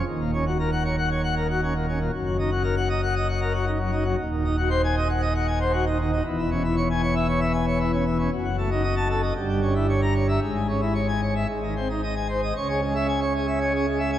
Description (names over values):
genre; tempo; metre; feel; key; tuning
classical, organ toccata; 116 BPM; 4/4; straight; C# minor from 4.2 s; A4 = 440 Hz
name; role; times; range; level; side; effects
pipe organ, plenum; solo; 0.0-14.2 s; Eb1 to Bb5; -22 LUFS; equal; none
room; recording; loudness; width
wet church reverb, RT60 3.4 s; worn, warbling old tape, cassette tape, warbly pitch drift; -22 LUFS; side -11 dB against mid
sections
0.0-12.6 A section; 12.6-14.2 B section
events
none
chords
0.1 Ebm7; 2.1 Ebm/Gb; 4.2 G#7/D#; 6.2 C#m/E; 8.3 D#dim/F#; 9.4 Gdim7; 10.4 C#m/G#; 11.5 G#; 12.6 C#m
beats
| 0.06 0.58 1.09 1.61 | 2.12 2.63 3.15 3.67 | 4.18 4.70 5.21 5.73 | 6.25 6.77 7.28 7.80 | 8.32 8.83 9.35 9.88 | 10.41 10.95 11.49 12.02 | 12.55 13.08 13.60 14.12